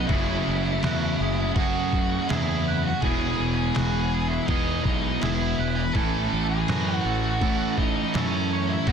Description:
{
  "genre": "rock, shoegaze and dream pop",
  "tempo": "82 BPM",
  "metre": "4/4",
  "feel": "straight",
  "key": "unclear",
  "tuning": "A4 = 440 Hz",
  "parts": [
    { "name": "octave-fuzz lead guitar", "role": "melody", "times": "0.0-8.9 s", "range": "C#4 to B4", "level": "-29 LUFS", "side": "equal", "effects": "distortion, analog delay" },
    { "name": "twangy electric guitar", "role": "arpeggios", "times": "0.0-8.9 s", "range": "F#4 to G#5", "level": "-35 LUFS", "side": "right 12 dB", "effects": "lush chorus, analog delay" },
    { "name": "crunchy overdriven guitar", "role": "riff", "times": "0.0-8.9 s", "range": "F#2 to E4", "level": "-30 LUFS", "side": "right 11 dB", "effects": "reverse reverb" },
    { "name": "raw garage guitar", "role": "riff", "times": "0.0-8.9 s", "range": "E2 to A3", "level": "-31 LUFS", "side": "right 1 dB", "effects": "overdrive" },
    { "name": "thick fuzz guitar", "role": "riff", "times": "0.0-8.9 s", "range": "E2 to A3", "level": "-30 LUFS", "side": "left 10 dB", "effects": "distortion, wide subtle chorus" },
    { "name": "growling fingered electric bass", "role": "bass", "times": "0.0-8.9 s", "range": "E1 to A2", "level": "-29 LUFS", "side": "equal", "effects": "overdrive" },
    { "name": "trip hop sampler-style drum kit", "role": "drums", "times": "0.1-8.9 s", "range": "crash cymbal, kick drum, snare drum", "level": "-29 LUFS", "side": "equal", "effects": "none" }
  ],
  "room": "digital ambience",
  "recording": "dense, heavily limited modern master",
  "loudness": "-22 LUFS",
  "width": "side -7 dB against mid",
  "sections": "0.0-8.9 A section",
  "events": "none",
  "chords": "0.1 F#madd9; 3.0 E; 6.0 A6"
}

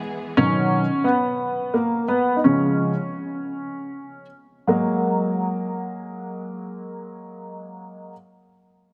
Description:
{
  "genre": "pop",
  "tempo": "51-59 BPM (dotted quarters)",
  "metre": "6/8",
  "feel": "straight",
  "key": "F# major",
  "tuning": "A4 = 439 Hz",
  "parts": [
    { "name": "clear grand piano", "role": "accompaniment", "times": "0.4-8.1 s", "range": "B2 to D#4", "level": "-23 LUFS", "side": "equal", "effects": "analog chorus" }
  ],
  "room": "moderate plate reverb, RT60 3.2 s",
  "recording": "bright 1980s-style digital production",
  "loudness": "-22 LUFS",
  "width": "mono",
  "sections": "0.0-4.7 A section; 4.7-8.9 B section",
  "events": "grand piano solo 0.0-4.7; slowing down 0.4-4.7",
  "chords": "0.4 B; 2.5 C#; 4.7 F#add9"
}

